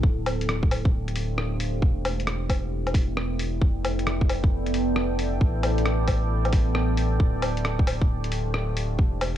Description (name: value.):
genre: future garage.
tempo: 134 BPM.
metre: 4/4.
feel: swing 66% on 16ths.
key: unclear.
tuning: A4 = 440 Hz.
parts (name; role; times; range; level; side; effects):
deep dark ambient pad; sustained chords; 0.0-9.4 s; A3 to G5; -30 LUFS; right 1 dB; chorus, built-in reverb, sidechain pumping.
warm sub bass; bass; 0.0-9.4 s; D1 to A1; -27 LUFS; equal; tube saturation, sidechain pumping.
electronic kick drum; drums; 0.0-9.1 s; none; -22 LUFS; equal; studio ambience.
lo-fi sampler-style drum kit; drums; 0.3-9.3 s; hi-hat, rim click, woodblock; -30 LUFS; left 1 dB; studio ambience.
room: light reverb.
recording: cassette tape.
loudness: -22 LUFS.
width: side -11 dB against mid.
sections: 0.0-9.4 A section.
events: none.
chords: 0.0 Dm7; 1.8 Em7; 3.6 Fmaj7; 5.4 A5; 7.2 Dm7.